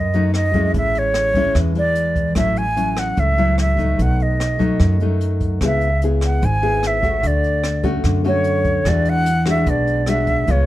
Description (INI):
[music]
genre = bossa nova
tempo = 148 BPM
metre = 4/4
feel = straight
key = unclear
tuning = A4 = 441 Hz
[part]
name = silver concert flute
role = melody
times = 0.0-10.7 s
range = C#5 to G#5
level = -20 LUFS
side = right 1 dB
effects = none
[part]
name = nylon-string guitar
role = accompaniment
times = 0.0-10.7 s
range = F#2 to G#4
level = -21 LUFS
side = left 3 dB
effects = none
[part]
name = upright bass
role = bass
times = 0.0-10.7 s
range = G#1 to F#2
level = -20 LUFS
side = right 1 dB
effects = none
[part]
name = jazz brush drum kit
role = drums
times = 0.1-10.6 s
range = hi-hat, kick drum, rim click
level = -26 LUFS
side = equal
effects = none
[sound]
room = light reverb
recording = close, detailed microphones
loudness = -15 LUFS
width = side -15 dB against mid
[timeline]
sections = 0.0-10.7 A section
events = none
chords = 0.0 B7 (rootless); 0.7 Amaj7; 2.4 F#m7/A; 4.0 B7; 5.6 C#m7; 7.2 Dmaj7; 8.9 E9